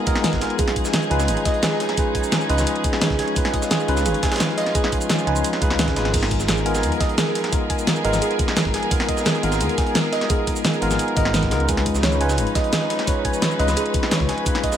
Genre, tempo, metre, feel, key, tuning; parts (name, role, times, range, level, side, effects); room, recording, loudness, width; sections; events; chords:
liquid drum and bass; 173 BPM; 4/4; straight; A4 = 440 Hz
tine electric piano; accompaniment; 0.0-14.8 s; G#3 to B4; -25 LUFS; left 1 dB; medium stereo tremolo, tape echo
dark studio string section; sustained chords; 0.0-14.8 s; E#3 to B4; -28 LUFS; left 2 dB; sidechain pumping
harp-like synth pluck; arpeggios; 0.1-14.7 s; G#4 to G#5; -26 LUFS; right 4 dB; chorus, ping-pong delay
breakbeat sampler-style drum kit; drums; 0.1-14.8 s; hi-hat, snare drum; -29 LUFS; equal; high-pass filter on hats, studio reverb, high-pass filter on snare
electronic kick drum; drums; 0.1-14.7 s; -24 LUFS; equal; studio reverb
pop drum kit; drums; 0.1-14.8 s; crash cymbal, hi-hat, shaker, snare drum; -24 LUFS; equal; studio reverb
dark detuned saw bass; bass; 0.3-14.3 s; G#1 to D#2; -23 LUFS; equal
light reverb; -18 LUFS; side -10 dB against mid
0.0-14.8 A section
0.0 G#m69; 0.6 C#9; 6.1 G#m69; 11.7 C#9